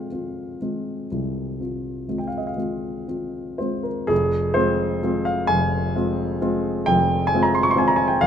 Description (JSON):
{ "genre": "classical, romantic nocturne for solo piano", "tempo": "39-45 BPM (dotted quarters)", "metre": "12/8", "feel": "rubato", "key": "F minor", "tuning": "A4 = 445 Hz", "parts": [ { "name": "warm baby grand piano", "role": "solo", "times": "0.0-8.3 s", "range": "F1 to Db6", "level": "-20 LUFS", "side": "equal", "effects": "none" } ], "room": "light reverb", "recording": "close, detailed microphones", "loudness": "-20 LUFS", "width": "side -8 dB against mid", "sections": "0.0-4.1 A section; 4.1-8.3 A section", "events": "none", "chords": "0.0 Fm", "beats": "1.10 2.60 | 4.11 5.50 6.87 8.24" }